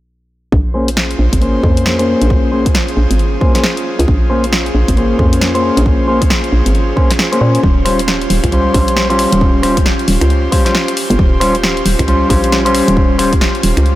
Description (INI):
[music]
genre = UK garage, two-step garage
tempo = 135 BPM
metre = 4/4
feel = swing 61% on 16ths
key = Bb dorian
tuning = A4 = 440 Hz
[part]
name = airy breathy pad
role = sustained chords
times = 0.5-14.0 s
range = Db4 to C5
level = -20 LUFS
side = equal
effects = chorus, sidechain pumping
[part]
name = hollow knocking FM bass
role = bass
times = 0.5-14.0 s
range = Eb1 to Bb2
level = -15 LUFS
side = equal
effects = none
[part]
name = electronic kick drum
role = drums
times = 0.5-13.4 s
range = none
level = -14 LUFS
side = equal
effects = studio reverb
[part]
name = clean electric guitar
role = stabs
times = 0.7-13.3 s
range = G3 to C5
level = -16 LUFS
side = left 1 dB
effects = low-pass filter, diffuse ambient delay
[part]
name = house drum kit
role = drums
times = 0.9-14.0 s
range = finger snaps, hi-hat, snare drum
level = -19 LUFS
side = equal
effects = studio reverb
[sound]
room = light reverb, digital ambience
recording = none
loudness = -10 LUFS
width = side -15 dB against mid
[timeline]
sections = 0.5-14.0 A section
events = filter sweep on FM bass 0.5-14.0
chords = 0.5 Bbm9; 7.6 Eb13